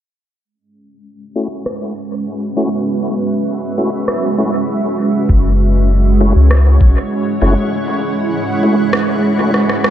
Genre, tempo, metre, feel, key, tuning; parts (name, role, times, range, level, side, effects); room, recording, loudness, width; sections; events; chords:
ambient dub; 99 BPM; 4/4; straight; A4 = 440 Hz
granular cloud pad; sustained chords; 1.7-9.9 s; G#3 to F#5; -16 LUFS; right 2 dB; built-in reverb
tonewheel organ; stabs; 1.4-9.5 s; A3 to F#4; -22 LUFS; left 1 dB; overdrive, chorus vibrato, slow rotary speaker, low-pass filter, dub echo
electronic rim click; drums; 1.7-9.9 s; -21 LUFS; equal; dub echo
soft dub sub bass; bass; 5.3-7.6 s; F#1 to C#2; -10 LUFS; equal; tube saturation
electronic kick drum; drums; 5.3-6.9 s; -13 LUFS; equal
moderate plate reverb, RT60 2.5 s; dreamy mix soaked in reverb, low-pass filter; -12 LUFS; side -11 dB against mid
0.4-9.9 A section
filter sweep on ambient pad 0.4-9.9; filter sweep on tonewheel organ 0.4-9.9; filter sweep 0.4-9.9; break 7.7-9.9; drum fill 9.5-9.9
0.4 F#m7